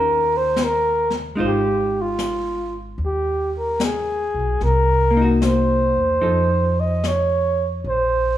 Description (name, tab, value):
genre	jazz ballad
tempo	74 BPM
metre	4/4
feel	swing 68% on 8ths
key	F minor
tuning	A4 = 439 Hz
part	breathy flugelhorn	melody	0.0-8.4 s	F4 to Eb5	-20 LUFS	right 1 dB	none
part	vintage hollow-body jazz guitar	accompaniment	0.0-7.8 s	Eb3 to C5	-23 LUFS	left 1 dB	none
part	upright bass	bass	0.0-8.4 s	Ab1 to F2	-24 LUFS	equal	none
part	jazz brush drum kit	drums	0.6-8.4 s	brushed snare drum, hi-hat, snare drum	-28 LUFS	left 4 dB	none
room	moderate recital hall reverb, RT60 1.3 s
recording	recorded in a church or concert hall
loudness	-17 LUFS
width	side -12 dB against mid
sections	0.0-8.4 A section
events	none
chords	0.0 Eb6; 1.4 Ab6; 4.6 Cm7b5; 6.2 F7; 7.8 N.C.